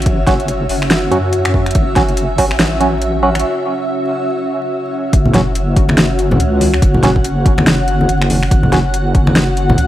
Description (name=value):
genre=deep dubstep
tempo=142 BPM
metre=4/4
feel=swing 59% on 16ths, half-time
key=F# minor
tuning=A4 = 440 Hz
part: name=granular cloud pad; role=sustained chords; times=0.0-9.9 s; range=C#4 to F#5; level=-18 LUFS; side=equal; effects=built-in reverb
part: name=deep soft wobble bass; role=bass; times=0.0-9.9 s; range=F#1 to F#2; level=-16 LUFS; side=equal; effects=chorus
part: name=deep house drum kit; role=drums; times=0.0-9.9 s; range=finger snaps, hi-hat, snare drum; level=-18 LUFS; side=equal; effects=overdrive
part: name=electronic kick drum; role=drums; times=0.1-2.5, 5.1-9.2 s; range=none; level=-14 LUFS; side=equal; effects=overdrive
part: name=percussive organ stab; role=stabs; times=0.3-8.8 s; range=F#3 to F#4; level=-19 LUFS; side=right 2 dB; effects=chorus, dub echo
part: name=congas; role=percussion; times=5.3-9.8 s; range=none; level=-18 LUFS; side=equal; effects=none
room=light reverb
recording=vinyl crackle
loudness=-11 LUFS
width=side -13 dB against mid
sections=0.0-5.1 A section; 5.1-9.9 B section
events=build-up 0.0-5.1; break 3.4-5.1; drop 5.1-9.9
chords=0.0 F#5